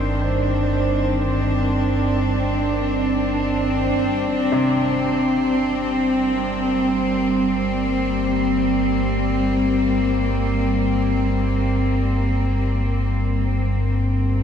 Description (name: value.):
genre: dark ambient drone.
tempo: free time.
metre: none.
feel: none.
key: G minor.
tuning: A4 = 440 Hz.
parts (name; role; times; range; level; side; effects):
warm studio cello section; sustained chords; 0.0-14.4 s; G2 to D4; -20 LUFS; equal; none.
clear grand piano; arpeggios; 0.0-13.7 s; C3; -30 LUFS; equal; tape echo.
deep rumbling drone; drone; 0.0-14.4 s; G1 to G2; -24 LUFS; equal; built-in reverb, wide subtle chorus.
bubbling stepped-filter texture; texture; 0.0-4.0 s; C4 to C5; -28 LUFS; right 3 dB; chorus, built-in reverb.
room: wet huge ambient reverb, RT60 7.8 s.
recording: dark, warm production.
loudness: -18 LUFS.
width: side -8 dB against mid.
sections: 0.0-3.9 A section; 3.9-14.4 B section.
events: none.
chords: 0.0 Cm/G; 3.9 Gm; 13.7 C5/G.